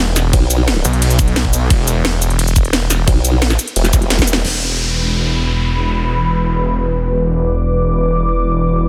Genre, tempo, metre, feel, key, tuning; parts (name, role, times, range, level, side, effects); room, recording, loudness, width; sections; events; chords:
dark technical drum and bass; 175 BPM; 4/4; straight; A4 = 440 Hz
snarling distorted saw bass; bass; 0.0-8.9 s; E1 to B1; -18 LUFS; equal; distortion, sidechain pumping
drum and bass drum kit; drums; 0.2-4.5 s; crash cymbal, hi-hat, ride cymbal, shaker, snare drum; -20 LUFS; equal; soft clipping on snare
formant-sweep wobble bass; bass; 0.3-0.8, 3.1-4.4 s; E1 to B1; -17 LUFS; equal; chorus
electronic kick drum; drums; 0.3-4.3 s; -16 LUFS; equal
zap and downlifter; sound effects; 3.9-7.2 s; -25 LUFS; equal
dark analog pad; sustained chords; 4.4-8.9 s; E3 to D6; -21 LUFS; equal; chorus, sidechain pumping
light reverb; dense, heavily limited modern master; -15 LUFS; mono
0.0-4.4 A section; 4.4-8.9 B section
drop 0.0-4.4; drum fill 4.1-4.4; band accent 4.3
0.0 E5